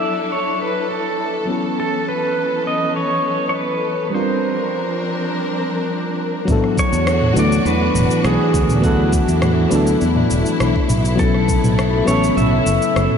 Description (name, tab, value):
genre	sunset chillout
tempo	102 BPM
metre	4/4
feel	straight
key	unclear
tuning	A4 = 440 Hz
part	pedal steel guitar	melody	0.0-13.2 s	F#4 to E5	-21 LUFS	equal	wide subtle chorus, diffuse ambient delay
part	mellow FM electric piano	accompaniment	0.0-13.2 s	F#3 to Bb4	-21 LUFS	moving between left 5 dB and right 3 dB	chorus, auto-pan, ping-pong delay
part	warm symphonic string section	sustained chords	0.0-13.2 s	C#3 to Bb4	-23 LUFS	left 1 dB	none
part	electronic kick drum	drums	6.5-11.6 s	none	-20 LUFS	right 1 dB	none
part	smooth R&B drum kit	drums	6.5-13.2 s	rim click, shaker, toms	-23 LUFS	right 1 dB	none
part	fretless electric bass	bass	6.9-13.1 s	E1 to E2	-19 LUFS	equal	none
room	wet cathedral reverb, RT60 5.1 s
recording	dreamy mix soaked in reverb, nothing above 11.0 kHz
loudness	-15 LUFS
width	side -7 dB against mid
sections	0.0-6.5 A section; 6.5-13.2 B section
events	none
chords	0.0 E9sus4; 1.5 B9sus4; 4.1 C9sus4; 6.5 E9sus4; 10.9 B9sus4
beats	0.01 0.60 1.19 | 1.78 2.37 2.95 3.54 | 4.13 4.72 5.31 5.89 | 6.48 7.07 7.66 8.25 | 8.84 9.42 10.01 10.60 | 11.19 11.78 12.37 12.95